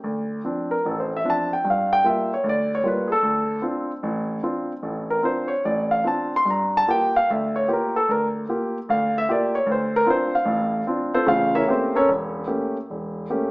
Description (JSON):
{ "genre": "solo jazz", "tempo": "149 BPM", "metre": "4/4", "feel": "swing 66% on 8ths, rubato", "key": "D minor", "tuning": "A4 = 440 Hz", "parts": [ { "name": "warm concert grand piano", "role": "solo", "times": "0.0-13.5 s", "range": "E1 to C6", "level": "-20 LUFS", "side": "equal", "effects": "none" } ], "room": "wet large studio reverb, RT60 1.4 s", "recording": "band playing live in one room, small speaker sound", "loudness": "-20 LUFS", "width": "side -24 dB against mid", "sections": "0.0-13.5 A section", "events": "grand piano solo 0.0-13.5", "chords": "0.0 Dm7; 1.7 Gm7; 3.2 Dm7; 6.5 Gm7; 9.7 Dm7; 11.3 A7b9" }